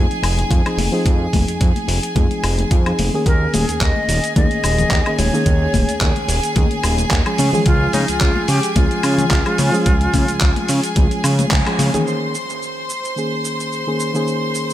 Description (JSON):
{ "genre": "nu-disco, nu disco", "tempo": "109 BPM", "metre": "4/4", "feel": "swing 54% on 16ths", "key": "unclear", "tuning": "A4 = 439 Hz", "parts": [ { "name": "reed electric piano", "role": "accompaniment", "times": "0.0-14.7 s", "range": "Eb3 to Ab4", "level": "-22 LUFS", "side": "equal", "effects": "sidechain pumping, low-pass filter, tape echo" }, { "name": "clear studio violin section", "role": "sustained chords", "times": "0.0-14.7 s", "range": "Ab4 to C6", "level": "-25 LUFS", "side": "equal", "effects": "sidechain pumping" }, { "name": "fat analog bass", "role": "bass", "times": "0.0-11.9 s", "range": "Eb1 to Db3", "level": "-19 LUFS", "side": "equal", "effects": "none" }, { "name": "dusty soul sampler-style drum kit", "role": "drums", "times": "0.1-14.7 s", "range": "cabasa, handclaps, hi-hat, woodblock", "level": "-24 LUFS", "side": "left 1 dB", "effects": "studio reverb" }, { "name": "congas", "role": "percussion", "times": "0.4-12.0 s", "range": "none", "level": "-26 LUFS", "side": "left 5 dB", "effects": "none" }, { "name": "electronic kick drum", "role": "drums", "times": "0.5-11.6 s", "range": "none", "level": "-17 LUFS", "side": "equal", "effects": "overdrive, studio reverb" }, { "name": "hollow concert flute", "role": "melody", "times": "3.3-11.5 s", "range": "Eb4 to Eb5", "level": "-23 LUFS", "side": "equal", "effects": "tape echo" } ], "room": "little or no reverb", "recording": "none", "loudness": "-15 LUFS", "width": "side -13 dB against mid", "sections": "0.0-12.1 A section; 12.1-14.7 B section", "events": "band accent 11.5; filter sweep on reed electric piano 12.1-14.7", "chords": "0.0 Fm7; 3.3 Eb7sus4; 7.4 Db; 12.1 Eb7sus4" }